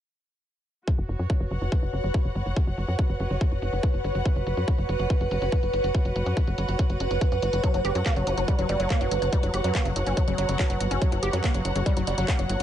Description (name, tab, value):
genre	psychedelic trance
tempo	142 BPM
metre	4/4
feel	straight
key	unclear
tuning	A4 = 439 Hz
part	evolving wavetable pad	sustained chords	1.5-12.6 s	B4	-32 LUFS	right 3 dB	phaser, built-in reverb, sidechain pumping
part	electronic kick drum	drums	0.9-12.4 s	none	-24 LUFS	equal	none
part	garage drum kit	drums	0.9-12.6 s	handclaps, hi-hat	-36 LUFS	equal	low-pass filter on hats, low-pass filter on snare, low-pass filter on room
part	rich studio string section	texture	0.9-12.6 s	F#4 to F#5	-33 LUFS	equal	sidechain pumping
part	tight sequencer bass	bass	1.0-12.6 s	F#1 to F#2	-27 LUFS	equal	none
part	woody wave-folded pluck	riff	7.6-12.6 s	F#3 to G4	-29 LUFS	equal	chorus, auto-pan, sidechain pumping, ping-pong delay
room	digital ambience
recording	nothing above 10.9 kHz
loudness	-23 LUFS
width	side -11 dB against mid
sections	0.9-12.6 A section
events	filter sweep on drum 0.9-12.6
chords	0.9 F#5